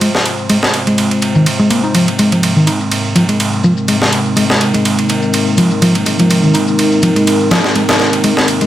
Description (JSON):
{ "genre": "breakbeat, breaks", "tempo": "124 BPM", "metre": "4/4", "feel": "swing 55% on 16ths", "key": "F minor", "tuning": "A4 = 441 Hz", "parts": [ { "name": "dark analog pad", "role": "sustained chords", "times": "0.0-8.7 s", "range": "Ab3 to C5", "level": "-15 LUFS", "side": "equal", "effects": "lush chorus" }, { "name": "hollow-body short-scale picked electric bass", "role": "riff", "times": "0.0-8.7 s", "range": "Eb3 to Eb4", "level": "-14 LUFS", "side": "equal", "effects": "tube saturation, low-pass filter, dub echo" }, { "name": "breakbeat sampler-style drum kit", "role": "drums", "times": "0.0-8.7 s", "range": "ride cymbal, snare drum", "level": "-15 LUFS", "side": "right 1 dB", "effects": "high-pass filter on cymbals, small room ambience, high-pass filter on snare" }, { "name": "shaker", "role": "drums", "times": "0.0-8.7 s", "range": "none", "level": "-30 LUFS", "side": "left 8 dB", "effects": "none" } ], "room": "light reverb", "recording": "none", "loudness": "-10 LUFS", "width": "side -12 dB against mid", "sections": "0.0-8.7 A section", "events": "filter sweep on analog synth pad 0.0-8.7", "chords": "0.0 Fm", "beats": "| 0.01 0.50 0.98 1.46 | 1.95 2.43 2.92 3.40 | 3.88 4.37 4.85 5.33 | 5.82 6.30 6.79 7.27 | 7.75 8.24" }